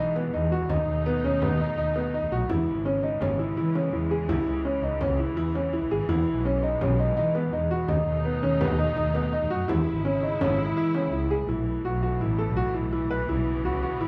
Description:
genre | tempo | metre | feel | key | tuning
contemporary instrumental, chamber music in an uneven meter | 167 BPM | 5/4 | straight | C# minor | A4 = 438 Hz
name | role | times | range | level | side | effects
muted studio string section | sustained chords | 0.0-14.1 s | B2 to E4 | -36 LUFS | equal | none
warm concert grand piano | arpeggios | 0.0-14.1 s | B3 to B4 | -29 LUFS | equal | none
dark double bass | bass | 0.0-14.1 s | G#1 to E3 | -30 LUFS | equal | none
frame drum | percussion | 0.2-11.1 s | none | -35 LUFS | equal | none
room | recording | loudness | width
moderate studio reverb, RT60 0.7 s | dark, warm production | -26 LUFS | mono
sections
0.0-11.5 A section; 11.5-14.1 B section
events
none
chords
0.0 Emaj7; 0.7 B7/D#; 2.5 C#m; 6.1 Emaj7; 7.9 B7/D#; 9.7 C#m; 11.5 B7sus4; 13.3 C#m7

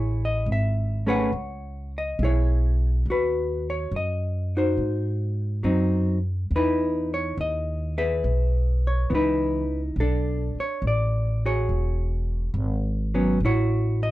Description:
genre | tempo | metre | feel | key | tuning
jazz ballad | 70 BPM | 4/4 | swing 69% on 8ths | unclear | A4 = 440 Hz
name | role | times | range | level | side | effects
vintage hollow-body jazz guitar | accompaniment | 0.0-14.1 s | E3 to F#5 | -25 LUFS | equal | none
upright bass | bass | 0.0-14.1 s | E1 to G#2 | -24 LUFS | equal | none
room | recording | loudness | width
little or no reverb | dark, warm production | -22 LUFS | side -16 dB against mid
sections
0.0-14.1 A section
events
none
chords
0.0 Amaj9; 3.0 D#m7; 4.8 G#7; 6.5 C#m9; 10.0 Bm7; 11.7 E69; 13.4 A6

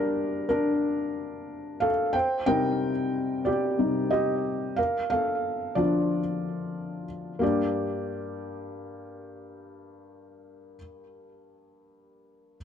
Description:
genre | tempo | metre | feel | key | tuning
pop | 91 BPM | 4/4 | straight | G minor | A4 = 440 Hz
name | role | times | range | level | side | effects
felt-muted upright piano | solo | 0.0-12.6 s | G2 to G5 | -25 LUFS | left 1 dB | tape echo
room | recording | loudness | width
small room ambience | dry, close 1970s-style studio recording | -25 LUFS | side -8 dB against mid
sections
0.0-7.4 A section; 7.4-10.1 B section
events
felt piano solo 0.0-7.4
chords
0.0 Gm; 2.1 Cm; 4.8 Bb; 7.4 Gm

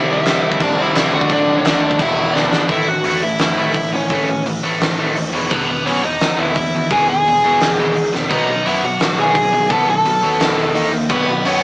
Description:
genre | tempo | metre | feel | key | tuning
punk rock | 172 BPM | 4/4 | straight | E major | A4 = 440 Hz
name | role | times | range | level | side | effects
overdriven electric guitar | melody | 0.0-11.6 s | B3 to A5 | -17 LUFS | equal | none
overdriven electric guitar | riff | 0.0-11.6 s | E2 to D#4 | -20 LUFS | equal | none
overdriven picked electric bass | bass | 0.0-11.6 s | E1 to B2 | -28 LUFS | equal | none
big rock drum kit | drums | 0.3-11.5 s | crash cymbal, hi-hat, kick drum, snare drum | -18 LUFS | equal | none
room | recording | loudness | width
light reverb | rough rehearsal-room recording, small speaker sound | -13 LUFS | side -28 dB against mid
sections
0.0-2.7 A section; 2.7-11.6 B section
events
drum fill 2.4-2.7, 8.1; half time 2.7-11.6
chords
0.0 C; 1.1 D; 2.0 E; 2.7 A; 5.3 E; 8.3 B; 10.4 E5; 10.8 D#5; 11.1 B5

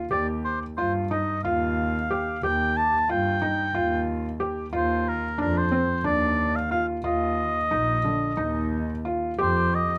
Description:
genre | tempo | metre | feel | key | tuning
contemporary instrumental, chamber music in an uneven meter | 181 BPM (eighths) | 7/8 | straight | Eb major | A4 = 440 Hz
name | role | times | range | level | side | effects
felt-muted upright piano | arpeggios | 0.0-9.9 s | D3 to G4 | -30 LUFS | equal | none
warm oboe | melody | 0.1-10.0 s | Bb4 to A5 | -28 LUFS | equal | none
rich double bass | bass | 0.1-9.9 s | Bb1 to G2 | -31 LUFS | equal | none
glockenspiel with hard plastic mallets | texture | 9.4-10.0 s | D6 | -35 LUFS | equal | none
room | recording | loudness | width
moderate booth ambience, RT60 0.2 s | dark, warm production | -25 LUFS | mono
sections
0.0-9.4 A section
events
none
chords
0.1 Ebadd9; 4.7 Cm11/Eb; 7.0 Eb5; 9.4 Fsus2

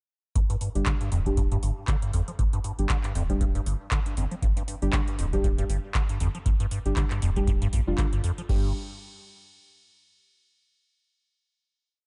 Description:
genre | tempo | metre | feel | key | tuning
acid house | 118 BPM | 4/4 | swing 56% on 16ths | unclear | A4 = 440 Hz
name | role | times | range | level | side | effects
liquid acid bass | riff | 0.4-8.7 s | F2 to F3 | -33 LUFS | equal | phaser, subtle chorus
round analog bass | bass | 0.4-8.7 s | D1 to Bb1 | -31 LUFS | equal | sidechain pumping
booming analog drum machine | drums | 0.4-8.6 s | crash cymbal, handclaps, hi-hat | -38 LUFS | equal | none
electronic kick drum | drums | 0.4-8.6 s | none | -29 LUFS | equal | none
deep mellow chord stab | stabs | 0.8-8.7 s | G3 to G4 | -35 LUFS | equal | chorus, cassette tape, delay
room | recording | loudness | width
little or no reverb | dark, warm production, nothing above 10.8 kHz | -26 LUFS | mono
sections
0.4-8.5 groove; 8.5-10.5 final chord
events
filter sweep on acid bass 0.4-8.5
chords
0.4 G5

